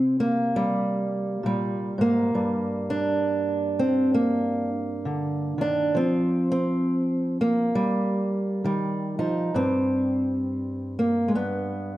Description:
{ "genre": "folk, solo fingerstyle acoustic guitar", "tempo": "67 BPM", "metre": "4/4", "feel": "swing 60% on 8ths", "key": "unclear", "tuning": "A4 = 440 Hz", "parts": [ { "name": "fingerpicked old ladder-braced acoustic guitar", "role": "solo", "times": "0.0-12.0 s", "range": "G2 to G4", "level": "-22 LUFS", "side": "right 1 dB", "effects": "none" } ], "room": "wet large studio reverb, RT60 1.3 s", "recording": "dark, warm production", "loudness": "-22 LUFS", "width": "side -15 dB against mid", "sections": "0.0-12.0 A section", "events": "none", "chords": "0.0 C5; 2.3 Gm; 5.9 Fsus2; 9.5 N.C.; 11.3 G", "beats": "0.54 1.44 | 2.34 3.24 4.14 5.04 | 5.94 6.84 7.74 8.64 | 9.54 10.44 11.34" }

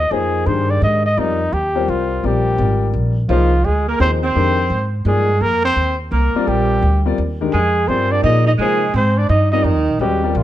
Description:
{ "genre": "modal jazz", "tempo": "170 BPM", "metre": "3/4", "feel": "swing 65% on 8ths", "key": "F dorian", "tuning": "A4 = 440 Hz", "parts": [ { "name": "breathy trumpet", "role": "melody", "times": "0.0-10.4 s", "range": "Eb4 to Eb5", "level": "-19 LUFS", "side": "equal", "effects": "plate reverb" }, { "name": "upright bass", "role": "bass", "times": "0.0-10.4 s", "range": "Ab1 to C3", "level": "-18 LUFS", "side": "equal", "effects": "none" }, { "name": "clear grand piano", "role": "accompaniment", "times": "0.1-10.4 s", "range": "Eb3 to Eb5", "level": "-21 LUFS", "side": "left 6 dB", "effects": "none" }, { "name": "warm alto saxophone", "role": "second line", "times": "3.3-10.4 s", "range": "Eb3 to Eb4", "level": "-22 LUFS", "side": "right 5 dB", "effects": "none" } ], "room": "light reverb", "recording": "dark, warm production", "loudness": "-14 LUFS", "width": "side -13 dB against mid", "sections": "0.0-10.4 A section", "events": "none", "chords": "0.0 Fm9; 1.2 Eb; 3.3 Fm9; 5.4 Eb; 7.5 Fm9; 9.6 Eb", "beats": "| 0.12 0.47 0.82 | 1.18 1.53 1.88 | 2.24 2.59 2.94 | 3.30 3.65 4.00 | 4.36 4.71 5.06 | 5.42 5.77 6.12 | 6.47 6.83 7.18 | 7.53 7.88 8.24 | 8.59 8.94 9.29 | 9.64 10.00 10.35" }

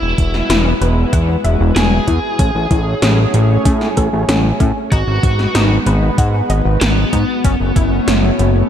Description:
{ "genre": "synthwave", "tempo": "95 BPM", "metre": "4/4", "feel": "straight", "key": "E major", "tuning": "A4 = 440 Hz", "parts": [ { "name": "lead guitar through a small cranked amp", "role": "melody", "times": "0.0-8.7 s", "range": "B3 to G#4", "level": "-20 LUFS", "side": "left 1 dB", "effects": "overdrive, tape echo" }, { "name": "chorused pulse-width pad", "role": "sustained chords", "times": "0.0-8.7 s", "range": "G#3 to C#5", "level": "-22 LUFS", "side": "equal", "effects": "sidechain pumping" }, { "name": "fat analog bass", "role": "bass", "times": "0.0-8.6 s", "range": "E1 to A2", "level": "-15 LUFS", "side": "equal", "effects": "sidechain pumping" }, { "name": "80s electronic pad drums", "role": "drums", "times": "0.2-8.5 s", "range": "hi-hat, snare drum", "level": "-20 LUFS", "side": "equal", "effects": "overdrive" }, { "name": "electronic kick drum", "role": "drums", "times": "0.2-7.9 s", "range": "none", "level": "-16 LUFS", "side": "equal", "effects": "overdrive" }, { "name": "analog pluck", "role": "arpeggios", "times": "0.5-8.3 s", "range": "C#4 to F#5", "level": "-24 LUFS", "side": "left 4 dB", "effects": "chorus, ping-pong delay" } ], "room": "light reverb", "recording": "dark, warm production", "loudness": "-12 LUFS", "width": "side -9 dB against mid", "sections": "0.0-8.7 A section", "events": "filter sweep on synth arpeggio sound 0.0-8.7", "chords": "0.0 Eadd9; 2.4 A6; 4.9 G#m7; 7.4 F#m7", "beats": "0.50 1.13 1.76 | 2.39 3.02 3.66 4.29 | 4.92 5.55 6.18 6.81 | 7.45 8.08" }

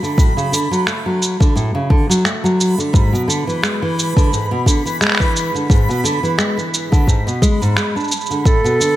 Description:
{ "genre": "folktronica", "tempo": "87 BPM", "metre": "4/4", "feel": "swing 56% on 16ths", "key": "unclear", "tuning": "A4 = 440 Hz", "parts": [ { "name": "nylon-string guitar", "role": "arpeggios", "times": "0.0-9.0 s", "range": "G#2 to D4", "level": "-17 LUFS", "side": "equal", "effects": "tape echo" }, { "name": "electronic cabasa and finger snaps", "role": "drums", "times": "0.0-9.0 s", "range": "none", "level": "-21 LUFS", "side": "right 1 dB", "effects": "none" }, { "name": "backwards swelling texture", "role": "texture", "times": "0.0-9.0 s", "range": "B5", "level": "-25 LUFS", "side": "right 2 dB", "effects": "built-in reverb" }, { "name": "electronic kick drum", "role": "drums", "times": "0.2-8.6 s", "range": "none", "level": "-13 LUFS", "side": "equal", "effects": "overdrive" }, { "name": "warm clarinet", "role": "melody", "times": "8.5-9.0 s", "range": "A4", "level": "-15 LUFS", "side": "right 1 dB", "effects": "none" } ], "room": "light reverb, digital ambience", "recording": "none", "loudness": "-14 LUFS", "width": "side -14 dB against mid", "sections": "0.0-9.0 A section", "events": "none", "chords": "0.0 D; 2.9 E7; 8.5 Bm7", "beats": "| 0.18 0.87 1.56 2.25 | 2.94 3.63 4.32 5.01 | 5.70 6.39 7.08 7.77 | 8.46" }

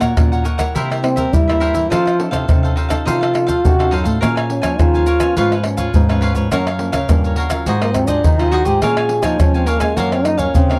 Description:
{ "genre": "samba and choro", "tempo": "104 BPM", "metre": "4/4", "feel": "straight", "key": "Bb minor", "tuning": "A4 = 440 Hz", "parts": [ { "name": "breathy trombone", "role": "melody", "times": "0.0-10.8 s", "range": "Ab3 to Ab4", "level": "-20 LUFS", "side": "equal", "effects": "tape echo" }, { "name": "cavaquinho", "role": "accompaniment", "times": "0.0-10.8 s", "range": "Eb4 to Ab5", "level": "-26 LUFS", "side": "equal", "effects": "none" }, { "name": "nylon-string guitar", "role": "accompaniment", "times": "0.0-10.8 s", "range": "F2 to C5", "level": "-28 LUFS", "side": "equal", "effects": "none" }, { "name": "nylon-string guitar", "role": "bass", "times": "0.0-10.8 s", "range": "Gb2 to G3", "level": "-23 LUFS", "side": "equal", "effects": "none" }, { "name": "maracas, surdo, pandeiro and tamborim", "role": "percussion", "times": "0.0-10.8 s", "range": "none", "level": "-19 LUFS", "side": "equal", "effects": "none" } ], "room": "light reverb", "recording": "cassette tape", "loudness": "-16 LUFS", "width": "mono", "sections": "0.0-10.8 A section", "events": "trombone solo 0.0-10.8", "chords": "0.0 Ebm9/Bb; 0.8 C7; 1.9 F7b13; 4.2 Bbm9; 5.4 Db7/Ab; 6.5 Gbmaj7; 7.7 Ab6; 8.8 Bbm7; 10.0 Gbmaj7", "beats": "0.18 0.76 1.33 | 1.91 2.49 3.06 3.64 | 4.22 4.79 5.37 5.95 | 6.52 7.10 7.67 8.25 | 8.82 9.40 9.97 10.55" }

